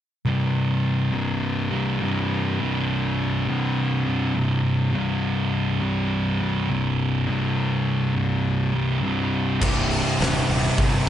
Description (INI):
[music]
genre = stoner and doom metal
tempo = 103 BPM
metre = 4/4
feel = straight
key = unclear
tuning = A4 = 436 Hz
[part]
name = thick fuzz guitar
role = riff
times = 0.3-11.1 s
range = C2 to C3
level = -23 LUFS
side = left 3 dB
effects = distortion
[part]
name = thick fuzz guitar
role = riff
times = 0.3-11.1 s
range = C2 to C3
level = -25 LUFS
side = right 6 dB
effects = distortion
[part]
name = distorted electric guitar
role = riff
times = 9.6-11.1 s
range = C2 to C3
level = -26 LUFS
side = right 2 dB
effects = overdrive
[part]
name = fuzz fingered electric bass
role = bass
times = 9.6-11.1 s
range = C1 to G1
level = -27 LUFS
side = equal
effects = overdrive
[part]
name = oversized low-tuned drum kit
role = drums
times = 9.6-10.9 s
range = crash cymbal, hi-hat, kick drum, snare drum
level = -23 LUFS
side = equal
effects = none
[sound]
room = small room reverb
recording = nothing above 10.7 kHz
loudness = -21 LUFS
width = side -10 dB against mid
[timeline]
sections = 0.3-9.6 A section; 9.6-11.1 B section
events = none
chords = 0.3 C5; 9.6 Cm